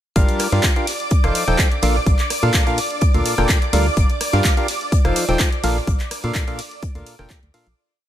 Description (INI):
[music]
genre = piano house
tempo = 126 BPM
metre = 4/4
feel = straight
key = Bb major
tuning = A4 = 440 Hz
[part]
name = analog string pad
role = sustained chords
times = 0.2-7.8 s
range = D5 to D6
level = -26 LUFS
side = right 1 dB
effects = ensemble chorus, sidechain pumping
[part]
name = percussive organ stab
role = riff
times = 0.2-7.7 s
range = Bb2 to G5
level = -22 LUFS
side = equal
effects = chorus, sidechain pumping, ping-pong delay
[part]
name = organ-like FM bass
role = bass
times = 0.2-7.7 s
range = Eb1 to Bb2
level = -20 LUFS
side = equal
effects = sidechain pumping
[part]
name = electronic kick drum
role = drums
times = 0.2-7.4 s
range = none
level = -17 LUFS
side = equal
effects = none
[part]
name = jazz brush drum kit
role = drums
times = 0.2-7.7 s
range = hi-hat, snare drum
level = -33 LUFS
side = left 4 dB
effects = none
[part]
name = punchy analog drum machine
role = drums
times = 0.2-7.8 s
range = handclaps, hi-hat, ride cymbal, rim click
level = -24 LUFS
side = equal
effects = none
[sound]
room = little or no reverb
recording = none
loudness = -16 LUFS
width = side -12 dB against mid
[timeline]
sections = 0.2-7.8 drop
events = drop 0.2-7.8; fade-out 5.2-7.8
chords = 0.2 Gm7; 0.9 F7; 1.8 Bbmaj7; 4.0 Gm7; 4.7 F7; 5.6 Bbmaj7